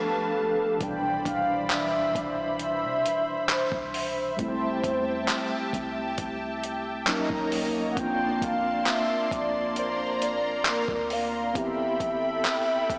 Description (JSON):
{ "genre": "contemporary R&B", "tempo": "67 BPM", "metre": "4/4", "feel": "straight", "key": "C major", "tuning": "A4 = 440 Hz", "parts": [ { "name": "mellow horn-like synth lead", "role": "melody", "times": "0.0-13.0 s", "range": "A4 to G5", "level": "-30 LUFS", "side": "equal", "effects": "chorus, diffuse ambient delay" }, { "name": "mellow tine electric piano", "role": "accompaniment", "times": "0.0-13.0 s", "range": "B2 to G4", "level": "-35 LUFS", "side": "equal", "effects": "none" }, { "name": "lush unison pad", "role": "sustained chords", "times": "0.0-13.0 s", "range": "E3 to C6", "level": "-34 LUFS", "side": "equal", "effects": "chorus, sidechain pumping" }, { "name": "warm 808-style bass", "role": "bass", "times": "0.8-13.0 s", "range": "A1 to C3", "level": "-48 LUFS", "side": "equal", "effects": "none" }, { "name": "dusty soul sampler-style drum kit", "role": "drums", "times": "0.8-13.0 s", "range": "handclaps, hi-hat, kick drum", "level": "-33 LUFS", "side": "equal", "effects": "overdrive" } ], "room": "wet lush hall reverb, RT60 2.7 s", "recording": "dreamy mix soaked in reverb, small speaker sound", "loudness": "-27 LUFS", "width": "mono", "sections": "0.8-13.0 A section", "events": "break 0.0-0.8", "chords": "0.0 G9; 0.8 Cmaj9; 4.4 C6; 7.1 Bmaj9; 8.0 Bbmaj9; 11.6 Am9", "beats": "| 0.81 1.70 2.60 3.49 | 4.39 5.29 6.18 7.08 | 7.97 8.87 9.76 10.66 | 11.55 12.45" }